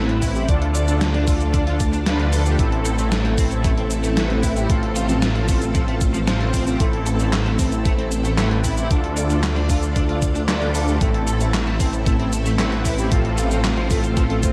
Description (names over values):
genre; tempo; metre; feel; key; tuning
synthwave; 114 BPM; 4/4; straight; A minor; A4 = 440 Hz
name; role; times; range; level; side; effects
string machine, full ensemble; sustained chords; 0.0-14.5 s; A3 to D5; -29 LUFS; equal; ensemble chorus, sidechain pumping
overdriven electric guitar; riff; 0.0-14.3 s; F3 to D5; -32 LUFS; equal; ensemble chorus, delay
mellow synth brass; stabs; 0.0-14.5 s; A2 to C5; -28 LUFS; equal; chorus, delay
detuned saw bass; bass; 0.0-14.5 s; A1 to D2; -24 LUFS; equal; chorus, sidechain pumping
gated 80s digital drum machine; drums; 0.1-14.5 s; cabasa, handclaps, hi-hat, snare drum; -29 LUFS; equal; gated reverb, gated reverb snare
electronic kick drum; drums; 0.2-14.5 s; none; -23 LUFS; equal; none
room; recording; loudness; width
light reverb, digital ambience; none; -20 LUFS; mono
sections
0.0-14.5 A section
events
none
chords
0.5 Dm; 2.6 Am; 4.7 F/A; 6.8 Am; 8.9 Dm; 11.0 Am; 13.1 F/A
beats
| 0.49 1.01 1.54 2.06 | 2.59 3.12 3.64 4.17 | 4.70 5.22 5.75 6.28 | 6.80 7.33 7.85 8.38 | 8.91 9.43 9.96 10.49 | 11.01 11.54 12.06 12.59 | 13.12 13.64 14.17